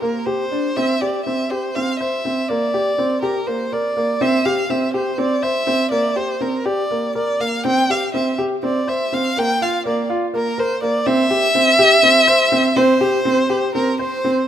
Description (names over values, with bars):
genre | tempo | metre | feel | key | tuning
contemporary instrumental, chamber music in an uneven meter | 245 BPM (eighths) | 7/8 | straight | C mixolydian | A4 = 440 Hz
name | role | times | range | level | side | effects
dark violin | melody | 0.0-14.5 s | Bb4 to G5 | -18 LUFS | equal | none
warm baby grand piano | arpeggios | 0.0-14.4 s | Bb3 to C5 | -19 LUFS | equal | none
room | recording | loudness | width
light reverb | close, detailed microphones | -15 LUFS | side -10 dB against mid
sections
0.8-14.5 A section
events
none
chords
0.0 C5; 0.8 C; 2.5 Gm; 4.2 C; 5.9 Gm; 7.7 C5; 9.4 Bb5; 11.1 C5